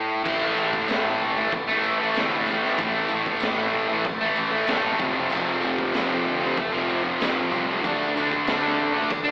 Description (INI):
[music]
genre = garage rock duo or trio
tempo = 95 BPM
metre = 4/4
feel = straight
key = unclear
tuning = A4 = 440 Hz
[part]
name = fuzz guitar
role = riff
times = 0.0-9.3 s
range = F2 to D4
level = -22 LUFS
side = equal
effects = distortion, slapback echo
[part]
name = tambourine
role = percussion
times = 0.2-9.2 s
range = none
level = -43 LUFS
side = equal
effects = none
[part]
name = growling picked electric bass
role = bass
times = 0.3-9.3 s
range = E1 to E2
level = -34 LUFS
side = equal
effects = overdrive
[part]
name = raw garage drum kit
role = drums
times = 0.3-9.3 s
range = crash cymbal, kick drum, snare drum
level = -29 LUFS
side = equal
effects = none
[sound]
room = light reverb, small room ambience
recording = live gig heard through the venue's PA, recital hall reverb, AM radio sound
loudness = -21 LUFS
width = side -27 dB against mid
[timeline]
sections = 0.3-9.3 A section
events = break 0.0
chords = 0.3 A5; 5.0 F; 7.8 D5